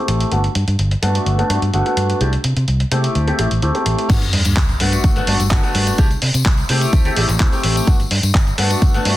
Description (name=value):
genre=filtered disco house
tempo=127 BPM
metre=4/4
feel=straight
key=G major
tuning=A4 = 440 Hz
part: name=bright grand piano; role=accompaniment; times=0.0-9.1 s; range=A3 to G4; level=-20 LUFS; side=left 1 dB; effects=phaser, sidechain pumping, low-pass filter
part: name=fingered electric bass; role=bass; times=0.1-9.1 s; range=G1 to C3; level=-18 LUFS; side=equal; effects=sidechain pumping, low-pass filter
part: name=dusty soul sampler-style drum kit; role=drums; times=0.1-9.2 s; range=crash cymbal, handclaps, hi-hat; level=-23 LUFS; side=equal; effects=sidechain pumping on hats, sidechain pumping on cymbals
part: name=tambourine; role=percussion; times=0.2-9.0 s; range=none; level=-29 LUFS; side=left 6 dB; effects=sidechain pumping on perc, low-pass filter on perc
part: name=electronic kick drum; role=drums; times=4.1-8.9 s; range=none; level=-15 LUFS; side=equal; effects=none
part: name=sub drop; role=sound effects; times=4.1-6.0 s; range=none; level=-23 LUFS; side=equal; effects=none
room=light reverb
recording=dense, heavily limited modern master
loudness=-14 LUFS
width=side -15 dB against mid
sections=0.0-4.1 A section; 4.1-9.2 B section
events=filter sweep 0.0-4.1; drop 4.1-9.2; impact 4.1-6.0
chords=0.3 Gmaj7; 2.2 C6; 3.2 D9sus4; 4.1 Gmaj7; 6.0 C6; 6.9 D9sus4; 7.9 Gmaj7